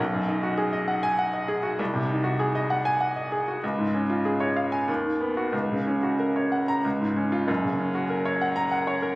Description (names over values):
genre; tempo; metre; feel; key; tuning
classical, virtuoso piano study; 90-100 BPM; 3/4; rubato; F# major; A4 = 440 Hz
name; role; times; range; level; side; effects
clear baby grand piano; solo; 0.0-9.2 s; F#1 to A#5; -23 LUFS; equal; none
room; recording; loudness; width
moderate recital hall reverb, RT60 1.7 s; recorded on a phone in the room, club reverb, compression; -23 LUFS; side -20 dB against mid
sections
0.0-7.5 A section; 7.5-9.2 A section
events
none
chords
0.0 B6; 1.8 G#7/B#; 3.6 C#; 4.9 B/D#; 5.5 F#/C#; 6.8 C#; 7.5 F#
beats
0.59 1.19 | 1.80 2.40 3.01 | 3.63 4.25 4.88 | 5.53 6.20 6.85 | 7.49 8.11 8.73